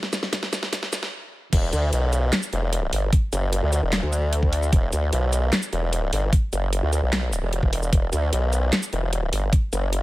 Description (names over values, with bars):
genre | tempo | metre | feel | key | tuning
heavy wobble dubstep | 150 BPM | 4/4 | half-time | E minor | A4 = 444 Hz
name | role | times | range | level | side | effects
dubstep drum kit | drums | 0.0-10.0 s | crash cymbal, handclaps, hi-hat, shaker, snare drum | -26 LUFS | equal | small room ambience
electronic kick drum | drums | 0.3-9.6 s | none | -19 LUFS | equal | small room ambience
formant-sweep wobble bass | bass | 1.5-10.0 s | E1 to D2 | -22 LUFS | equal | chorus, overdrive
room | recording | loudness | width
little or no reverb | high-pass filter | -21 LUFS | side -18 dB against mid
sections
0.0-1.5 A section; 1.5-10.0 B section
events
build-up 0.0-1.5; drum fill 0.0-1.1; stop 1.1-1.5; drop 1.5-10.0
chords
none